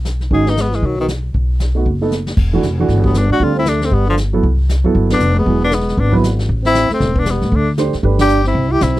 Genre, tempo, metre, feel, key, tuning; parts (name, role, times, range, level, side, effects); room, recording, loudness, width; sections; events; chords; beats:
jazz, small-group swing and bop; 233 BPM; 4/4; swing 60% on 8ths; E minor; A4 = 441 Hz
upright bass; bass; 0.0-9.0 s; E1 to A2; -16 LUFS; equal
vintage brush drum kit; drums; 0.0-9.0 s; brushed snare drum, crash cymbal, hi-hat, kick drum, ride cymbal, snare drum; -22 LUFS; equal
bright tenor saxophone; melody; 0.3-9.0 s; D#3 to G#4; -18 LUFS; left 4 dB
breathy trombone; second line; 0.3-9.0 s; B2 to E4; -19 LUFS; right 2 dB
dark baby grand piano; accompaniment; 0.3-9.0 s; D#3 to C5; -18 LUFS; right 4 dB
little or no reverb; dry, close 1970s-style studio recording; -13 LUFS; side -16 dB against mid
0.0-2.4 A section; 2.4-9.0 B section
drum fill 2.1; band accent 5.1, 8.2
0.3 G#m7; 1.3 B7; 2.4 Em7; 3.4 Dm7; 3.9 Gadd9; 4.4 Cmaj9; 5.5 E; 6.5 Am9; 7.5 D5; 8.0 Gadd9
0.06 | 0.31 0.57 0.83 1.09 | 1.34 1.60 1.86 2.12 | 2.37 2.63 2.89 3.15 | 3.40 3.66 3.92 4.18 | 4.43 4.69 4.95 5.21 | 5.46 5.72 5.98 6.24 | 6.49 6.75 7.01 7.27 | 7.52 7.78 8.04 8.29 | 8.55 8.81